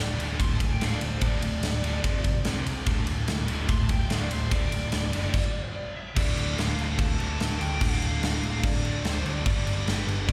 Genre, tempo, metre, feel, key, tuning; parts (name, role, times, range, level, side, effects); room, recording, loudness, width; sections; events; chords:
hard rock; 146 BPM; 4/4; straight; D minor; A4 = 440 Hz
lead guitar through a small cranked amp; melody; 0.0-10.3 s; B4 to C6; -39 LUFS; equal; overdrive, slapback echo, tape echo
overdriven tonewheel organ; sustained chords; 0.0-10.3 s; F3 to F5; -47 LUFS; equal
crunchy overdriven guitar; riff; 0.0-10.3 s; D2 to C4; -42 LUFS; equal
overdriven electric guitar; riff; 0.0-10.3 s; D2 to C4; -38 LUFS; equal
tight distorted guitar; riff; 0.0-10.3 s; D2 to C4; -39 LUFS; equal; distortion
picked electric bass; bass; 0.0-10.3 s; D1 to D2; -32 LUFS; equal
big rock drum kit; drums; 0.2-10.3 s; crash cymbal, kick drum, ride cymbal, snare drum; -30 LUFS; equal
small room ambience; live gig heard through the venue's PA, recital hall reverb; -27 LUFS; mono
0.0-6.2 A section; 6.2-10.3 B section
lead electric guitar solo 0.0-6.2; stop 5.3-6.2
0.0 D5; 2.0 F5; 2.5 C5; 2.9 D5; 5.3 N.C.; 6.2 Dm; 9.5 G